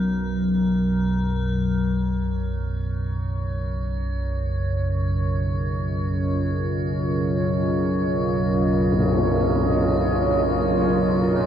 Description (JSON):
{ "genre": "dark ambient drone", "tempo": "free time", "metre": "none", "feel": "none", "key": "unclear", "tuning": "A4 = 443 Hz", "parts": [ { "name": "analog drone", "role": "drone", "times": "0.0-11.5 s", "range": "B1 to F#2", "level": "-23 LUFS", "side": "equal", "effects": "chorus, phaser" }, { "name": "metallic inharmonic drone", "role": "texture", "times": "0.0-11.5 s", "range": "A#4 to C#5", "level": "-31 LUFS", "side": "right 1 dB", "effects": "chorus, built-in reverb" }, { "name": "deep dark ambient pad", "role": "sustained chords", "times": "3.5-11.5 s", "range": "C#3 to D#5", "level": "-25 LUFS", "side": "right 1 dB", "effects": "chorus, built-in reverb" }, { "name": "tam-tam", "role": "percussion", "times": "8.9-9.2 s", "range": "none", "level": "-26 LUFS", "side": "left 2 dB", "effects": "low-pass filter on cymbals" }, { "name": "tubular bells", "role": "arpeggios", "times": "11.4-11.5 s", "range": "C#4", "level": "-36 LUFS", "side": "right 2 dB", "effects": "none" } ], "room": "wet cathedral reverb, RT60 5.7 s", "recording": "worn, warbling old tape, cassette tape, warbly pitch drift", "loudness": "-20 LUFS", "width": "side -9 dB against mid", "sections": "0.0-11.5 A section", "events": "filter sweep on synth drone 0.0-11.5", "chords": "0.0 B5; 1.5 C#add9" }